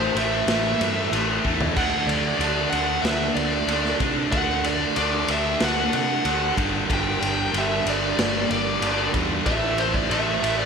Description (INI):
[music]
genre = hard rock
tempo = 94 BPM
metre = 4/4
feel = straight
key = unclear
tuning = A4 = 440 Hz
[part]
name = smooth overdriven lead guitar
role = melody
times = 0.0-10.7 s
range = C5 to G5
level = -26 LUFS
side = right 2 dB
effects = none
[part]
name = hollow soft pad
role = sustained chords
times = 0.0-10.7 s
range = G3 to E5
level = -37 LUFS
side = left 2 dB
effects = none
[part]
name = cranked stack guitar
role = riff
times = 0.0-10.7 s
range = G2 to D4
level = -27 LUFS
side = right 11 dB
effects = overdrive, slapback echo
[part]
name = heavy high-gain guitar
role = riff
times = 0.0-10.7 s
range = G2 to D4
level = -27 LUFS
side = left 12 dB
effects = distortion, slapback echo
[part]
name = picked electric bass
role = bass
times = 0.0-10.7 s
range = G1 to C3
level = -30 LUFS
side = left 1 dB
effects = none
[part]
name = raw garage drum kit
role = drums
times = 0.2-10.6 s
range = crash cymbal, kick drum, ride cymbal, snare drum, toms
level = -26 LUFS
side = left 1 dB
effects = none
[sound]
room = moderate lush hall reverb, RT60 2.5 s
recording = big arena sound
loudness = -20 LUFS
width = side -6 dB against mid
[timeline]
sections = 0.0-10.7 A section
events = drum fill 1.4-1.8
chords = 0.0 Am; 1.8 D; 6.6 G5; 9.5 Am